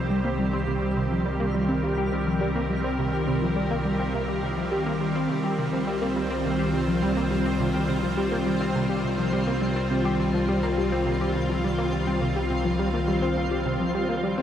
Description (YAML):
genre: ambient, sequencer-driven space music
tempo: 104 BPM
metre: 4/4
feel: straight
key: C minor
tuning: A4 = 441 Hz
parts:
  - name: evolving wavetable pad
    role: sustained chords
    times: 0.0-14.4 s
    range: Eb3 to F5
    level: -26 LUFS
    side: left 1 dB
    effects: ensemble chorus, built-in reverb
  - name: tight sequenced synth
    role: riff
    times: 0.0-14.4 s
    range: C3 to G4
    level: -28 LUFS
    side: equal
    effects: chorus, phaser, tape echo
  - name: analog drone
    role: bass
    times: 0.0-14.4 s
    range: C2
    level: -32 LUFS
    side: equal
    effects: chorus
  - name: twinkling granular texture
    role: texture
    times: 0.0-14.4 s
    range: F4 to F5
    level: -37 LUFS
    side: right 1 dB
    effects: built-in reverb, shimmer reverb
room: wet huge ambient reverb, RT60 9.4 s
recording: dark, warm production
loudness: -23 LUFS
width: side -10 dB against mid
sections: 0.0-14.4 A section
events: fade-in on synth texture 0.0-14.4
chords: 0.0 Cm